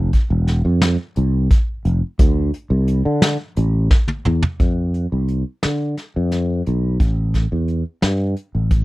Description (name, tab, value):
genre	progressive instrumental, band music in an uneven meter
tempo	175 BPM (eighths)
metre	7/8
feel	straight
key	unclear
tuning	A4 = 440 Hz
part	sustaining fretless electric bass	bass	0.0-8.8 s	E1 to D3	-17 LUFS	equal	wide subtle chorus
part	vintage brush drum kit	drums	0.1-8.8 s	hi-hat, kick drum, snare drum, toms	-17 LUFS	equal	none
room	little or no reverb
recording	dry, close 1970s-style studio recording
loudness	-16 LUFS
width	side -19 dB against mid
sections	0.0-4.6 A section; 4.6-8.8 B section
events	drum fill 3.9-4.6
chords	none